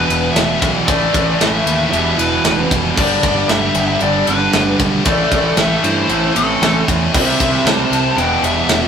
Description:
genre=heavy metal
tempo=115 BPM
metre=4/4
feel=straight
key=unclear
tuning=A4 = 440 Hz
part: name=nasal lead guitar with a parked wah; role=melody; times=0.0-8.9 s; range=A4 to A5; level=-19 LUFS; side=left 3 dB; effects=overdrive
part: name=high-gain distorted guitar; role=riff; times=0.0-8.9 s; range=E2 to C4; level=-20 LUFS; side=right 5 dB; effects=distortion
part: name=high-gain distorted guitar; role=riff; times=0.0-8.9 s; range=E2 to C4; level=-24 LUFS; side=equal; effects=none
part: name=scooped high-gain guitar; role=riff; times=0.0-8.9 s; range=G2 to G3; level=-22 LUFS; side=left 6 dB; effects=distortion
part: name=growling picked electric bass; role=bass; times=0.0-8.9 s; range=E1 to G2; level=-22 LUFS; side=equal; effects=overdrive
part: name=tight metal drum kit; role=drums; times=0.1-8.8 s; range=crash cymbal, kick drum, ride cymbal, snare drum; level=-18 LUFS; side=equal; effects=none
part: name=high-gain lead guitar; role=second line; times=1.9-8.9 s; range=C4 to C5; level=-25 LUFS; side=right 4 dB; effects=distortion
room=moderate studio reverb, RT60 0.6 s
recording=rough rehearsal-room recording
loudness=-12 LUFS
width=side -7 dB against mid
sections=0.0-8.9 A section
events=none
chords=0.0 Em; 0.9 A5; 1.9 Em; 3.0 G; 5.0 Am; 7.1 C; 8.2 Em

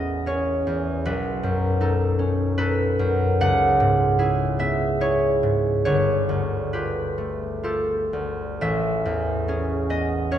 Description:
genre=classical, solo harp piece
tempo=58-80 BPM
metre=3/4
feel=rubato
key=A lydian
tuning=A4 = 440 Hz
part: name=concert harp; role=solo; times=0.0-10.4 s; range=G1 to F#5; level=-20 LUFS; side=equal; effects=none
room=wet concert hall reverb, RT60 2.5 s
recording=nothing above 10.3 kHz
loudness=-20 LUFS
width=side -10 dB against mid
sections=0.0-10.4 A section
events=none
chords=0.0 Amaj9; 1.1 B9; 3.4 C#m7; 5.9 G9; 8.6 Amaj9

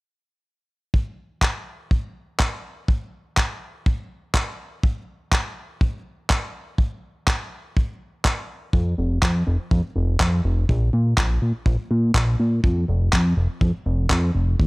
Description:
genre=italo disco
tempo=123 BPM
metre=4/4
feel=straight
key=unclear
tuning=A4 = 440 Hz
part: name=kick drum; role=drums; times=0.9-14.7 s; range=none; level=-21 LUFS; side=equal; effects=studio reverb
part: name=electronic handclaps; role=drums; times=1.4-14.2 s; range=none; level=-24 LUFS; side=equal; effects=studio reverb
part: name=fat analog bass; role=bass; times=8.7-14.7 s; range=F1 to Bb2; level=-20 LUFS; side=equal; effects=none
room=small room reverb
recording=dry, gritty hardware recording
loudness=-20 LUFS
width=side -26 dB against mid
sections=0.9-14.7 A section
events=none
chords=none

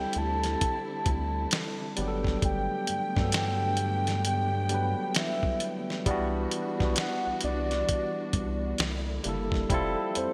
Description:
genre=R&B, neo-soul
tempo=66 BPM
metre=4/4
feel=swing 63% on 16ths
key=G major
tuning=A4 = 442 Hz
part: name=soft octave-layered synth lead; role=melody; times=0.0-10.3 s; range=C5 to A5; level=-35 LUFS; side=equal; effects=chorus, digital delay
part: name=barky tine electric piano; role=accompaniment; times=0.0-10.3 s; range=F#3 to B4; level=-35 LUFS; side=equal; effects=overdrive
part: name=dark studio string section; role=sustained chords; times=0.0-10.3 s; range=D3 to G5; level=-42 LUFS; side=equal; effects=none
part: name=rubbery square bass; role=bass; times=0.0-10.3 s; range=F1 to G2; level=-34 LUFS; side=equal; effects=none
part: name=dusty soul sampler-style drum kit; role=drums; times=0.1-10.3 s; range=finger snaps, hi-hat, kick drum, snare drum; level=-33 LUFS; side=equal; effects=gated reverb
room=moderate lush hall reverb, RT60 3.0 s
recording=bright 1980s-style digital production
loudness=-29 LUFS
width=mono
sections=0.0-10.3 A section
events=none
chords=0.0 D9sus4; 2.0 Gmaj9; 6.1 Cmaj9#11; 8.8 C13; 9.7 Fmaj7

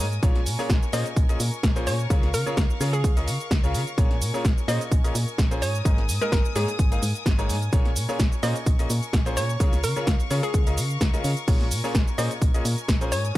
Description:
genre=piano house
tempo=128 BPM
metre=4/4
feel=swing 54% on 16ths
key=Bb minor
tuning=A4 = 443 Hz
part: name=rich symphonic string section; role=sustained chords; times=0.0-13.4 s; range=Bb4 to Eb6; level=-35 LUFS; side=left 2 dB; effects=sidechain pumping
part: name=bright concert grand piano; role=riff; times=0.0-13.4 s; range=Ab2 to F5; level=-31 LUFS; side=left 1 dB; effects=sidechain pumping
part: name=solid FM bass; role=bass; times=0.0-13.4 s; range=Ab1 to Db3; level=-26 LUFS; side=equal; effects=sidechain pumping
part: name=punchy analog drum machine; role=drums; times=0.0-13.4 s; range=crash cymbal, hi-hat, shaker, snare drum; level=-30 LUFS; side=equal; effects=overdrive
part: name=electronic kick drum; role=drums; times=0.2-13.4 s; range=none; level=-22 LUFS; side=equal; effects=none
part: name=hollow square pluck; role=melody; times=0.9-13.3 s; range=Ab4 to Eb5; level=-30 LUFS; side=equal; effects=chorus, analog delay
room=little or no reverb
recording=dry, gritty hardware recording, transformer saturation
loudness=-21 LUFS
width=side -16 dB against mid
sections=0.0-13.4 A section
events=none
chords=0.2 Bbm7; 2.1 Db6; 4.0 Bbm7; 5.6 Absus2; 7.7 Bbm7; 9.6 Db6; 11.5 Bbm7

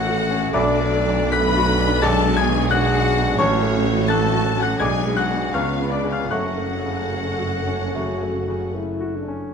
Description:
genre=classical, romantic movement for piano and orchestra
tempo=72-89 BPM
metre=4/4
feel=rubato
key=F# minor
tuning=A4 = 438 Hz
part: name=clear baby grand piano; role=melody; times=0.0-9.5 s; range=A1 to B6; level=-23 LUFS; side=left 2 dB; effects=none
part: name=warm studio violin section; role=melody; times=0.0-8.8 s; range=C#5 to B5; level=-31 LUFS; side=left 4 dB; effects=none
part: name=bright clarinet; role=second line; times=0.0-8.7 s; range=C#4 to B4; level=-30 LUFS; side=left 3 dB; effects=none
part: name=mellow hollow silver concert flute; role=second line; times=0.0-8.7 s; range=C#5 to B5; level=-30 LUFS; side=left 3 dB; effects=none
part: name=warm studio violin section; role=second line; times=0.0-8.7 s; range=C#5 to B5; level=-29 LUFS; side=left 3 dB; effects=none
part: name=warm studio viola section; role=accompaniment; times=0.0-9.3 s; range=C#4 to B4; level=-30 LUFS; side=right 2 dB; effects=none
part: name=mellow French horn section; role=sustained chords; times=0.0-9.5 s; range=F#3 to F#4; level=-29 LUFS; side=left 5 dB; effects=none
part: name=clear tuba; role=bass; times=0.0-9.3 s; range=F#1 to C#2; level=-30 LUFS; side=right 4 dB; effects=none
part: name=dark studio double bass section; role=bass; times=0.0-9.3 s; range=F#1 to C#2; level=-27 LUFS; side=right 3 dB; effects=none
part: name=warm studio cello section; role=bass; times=0.0-9.3 s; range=F#2 to C#3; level=-28 LUFS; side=right 3 dB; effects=none
part: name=mellow cor anglais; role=second line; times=0.5-8.2 s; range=C#5 to D5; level=-31 LUFS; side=right 3 dB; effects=none
part: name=dark bassoon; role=accompaniment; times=0.5-8.3 s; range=F#3 to B3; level=-30 LUFS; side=right 3 dB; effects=none
room=moderate scoring stage reverb, RT60 1.7 s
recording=none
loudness=-18 LUFS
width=side -6 dB against mid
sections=0.0-9.5 A section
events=none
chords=0.0 F#m/A; 0.5 Bm7; 2.0 G#dim/B; 3.4 F#m/A; 4.8 G#dim/B; 5.5 C#7; 6.3 F#m

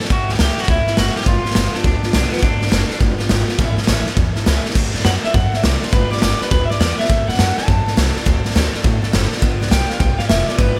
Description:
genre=rockabilly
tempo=206 BPM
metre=4/4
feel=swing 65% on 8ths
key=unclear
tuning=A4 = 443 Hz
part: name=picked steel-string acoustic guitar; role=accompaniment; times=0.0-10.8 s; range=G2 to A4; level=-29 LUFS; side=equal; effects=none
part: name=upright bass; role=bass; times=0.0-10.8 s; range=F1 to A2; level=-22 LUFS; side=equal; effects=none
part: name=raw garage drum kit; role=drums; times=0.0-10.7 s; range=crash cymbal, hi-hat, kick drum, snare drum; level=-19 LUFS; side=equal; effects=none
part: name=electric guitar through a small old amp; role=melody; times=0.1-10.8 s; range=B3 to A5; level=-25 LUFS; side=equal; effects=tape echo
room=studio ambience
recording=none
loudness=-17 LUFS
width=mono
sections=0.0-4.8 A section; 4.8-10.8 A section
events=none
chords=0.1 A7; 1.3 G7; 2.4 D7; 3.0 G7; 3.6 A7; 4.8 D7; 5.9 G7; 7.1 D7; 9.4 G7

